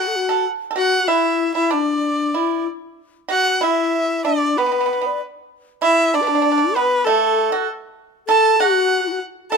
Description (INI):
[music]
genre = chinese traditional, Chinese chamber ensemble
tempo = 96 BPM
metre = 4/4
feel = rubato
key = D gong mode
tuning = A4 = 440 Hz
[part]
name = bright erhu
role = melody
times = 0.0-9.6 s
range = A4 to A5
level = -20 LUFS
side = equal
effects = none
[part]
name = breathy mellow low xiao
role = second line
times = 0.0-9.6 s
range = D4 to D5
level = -21 LUFS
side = left 8 dB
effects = none
[part]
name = pipa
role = second line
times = 0.0-9.6 s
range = A3 to A4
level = -20 LUFS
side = right 10 dB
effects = none
[sound]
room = light reverb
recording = close, detailed microphones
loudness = -16 LUFS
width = side -5 dB against mid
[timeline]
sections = 0.0-9.6 A section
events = none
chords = none